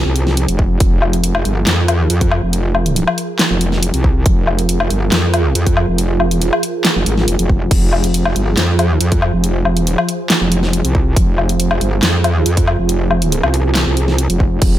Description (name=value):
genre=heavy wobble dubstep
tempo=139 BPM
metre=4/4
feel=half-time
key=F minor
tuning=A4 = 441 Hz
part: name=supersaw pad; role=sustained chords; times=0.0-14.8 s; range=F3 to E5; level=-21 LUFS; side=right 2 dB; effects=phaser, sidechain pumping, low-pass filter
part: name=metallic wobble bass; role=bass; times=0.0-14.8 s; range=F1 to F2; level=-15 LUFS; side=equal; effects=chorus, overdrive
part: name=big-room dance drum kit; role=drums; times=0.2-14.7 s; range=crash cymbal, handclaps, hi-hat, snare drum, woodblock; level=-18 LUFS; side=left 2 dB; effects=studio reverb
part: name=electronic kick drum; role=drums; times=0.6-14.7 s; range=none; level=-14 LUFS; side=equal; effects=studio reverb
room=little or no reverb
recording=none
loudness=-12 LUFS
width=side -13 dB against mid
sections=0.0-14.8 A section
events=none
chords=0.0 Fm